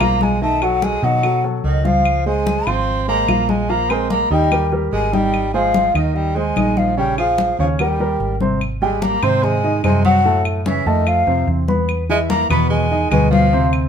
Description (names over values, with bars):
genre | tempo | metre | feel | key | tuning
Afro-Cuban jazz | 146 BPM | 4/4 | straight | Ab major | A4 = 440 Hz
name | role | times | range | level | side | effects
breathy mellow jazz flute | melody | 0.0-13.7 s | D#5 to C6 | -20 LUFS | left 2 dB | none
bright tenor saxophone | second line | 0.0-13.7 s | Eb3 to C4 | -24 LUFS | right 4 dB | none
warm baby grand piano | accompaniment | 0.0-13.9 s | A2 to Cb6 | -21 LUFS | right 1 dB | none
hollow-body short-scale fingered electric bass | bass | 0.0-13.9 s | Ab1 to B2 | -20 LUFS | equal | none
claves | percussion | 0.0-13.9 s | none | -28 LUFS | left 2 dB | none
congas | percussion | 0.0-13.9 s | none | -22 LUFS | left 2 dB | none
room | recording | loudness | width
moderate studio reverb, RT60 0.7 s | minimal, uncompressed stereo recording | -15 LUFS | side -7 dB against mid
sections
0.0-8.6 A section; 8.6-13.9 B section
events
none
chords
0.4 B9; 2.1 Dbmaj7; 3.7 Bb5; 4.5 Eb; 5.3 Ab69; 7.0 Bbm7; 7.8 Eb6; 8.6 Abmaj7; 10.2 Gbm; 11.1 F; 11.9 Emaj7